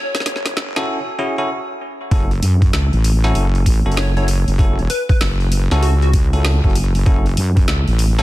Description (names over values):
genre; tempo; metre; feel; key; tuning
glitch hop; 97 BPM; 4/4; swing 63% on 16ths; F# minor; A4 = 440 Hz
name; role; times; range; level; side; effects
plucky unison lead; melody; 0.0-6.1 s; F#4 to C#5; -27 LUFS; left 1 dB; dub echo
drum and bass drum kit; drums; 0.1-8.2 s; hi-hat, snare drum; -25 LUFS; equal; overdrive
wobble bass; bass; 0.3-8.2 s; E1 to F#2; -16 LUFS; equal; chorus, tube saturation, high-pass filter
bell-like tine electric piano; stabs; 0.8-8.2 s; C#4 to A4; -24 LUFS; equal; sidechain pumping, dub echo
electronic kick drum; drums; 2.1-7.7 s; none; -15 LUFS; equal; none
room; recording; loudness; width
little or no reverb; dense, heavily limited modern master; -14 LUFS; side -16 dB against mid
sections
0.0-2.1 A section; 2.1-8.2 B section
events
build-up 0.0-2.1; drum fill 0.0-0.9; drop 2.1-8.2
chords
0.0 F#m7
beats
0.26 0.88 1.50 | 2.11 2.73 3.35 3.97 | 4.59 5.21 5.83 6.44 | 7.06 7.68